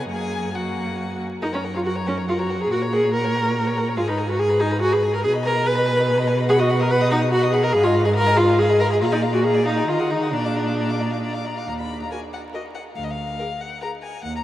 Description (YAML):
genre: quick classical-period movement for string quartet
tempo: 141 BPM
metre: 3/4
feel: rubato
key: F# major, Eb minor from 6.5 s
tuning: A4 = 441 Hz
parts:
  - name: warm violin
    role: melody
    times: 0.0-14.4 s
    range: Eb5 to Eb6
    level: -32 LUFS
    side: left 5 dB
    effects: none
  - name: rich violin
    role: second line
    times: 0.0-13.9 s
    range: F#4 to F#5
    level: -29 LUFS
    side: left 2 dB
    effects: none
  - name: clear viola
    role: accompaniment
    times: 0.0-13.9 s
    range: A#3 to B4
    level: -20 LUFS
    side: equal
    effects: none
  - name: warm cello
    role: bass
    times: 0.0-14.4 s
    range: D2 to Eb3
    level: -25 LUFS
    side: right 1 dB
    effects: none
room: wet huge ambient reverb, RT60 8.1 s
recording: in a vast, echoing space, vinyl crackle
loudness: -18 LUFS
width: side -13 dB against mid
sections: 0.0-1.4 A section; 1.4-11.7 B section; 11.7-14.4 A section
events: none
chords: 0.1 F#; 2.7 F#/A#; 4.0 G#m; 5.2 G#m/B; 6.5 B; 7.7 Fm7b5/Ab; 9.0 Bb7; 9.9 Ebm; 10.3 Bb; 11.7 Ebm; 13.0 Bb7/D (rootless)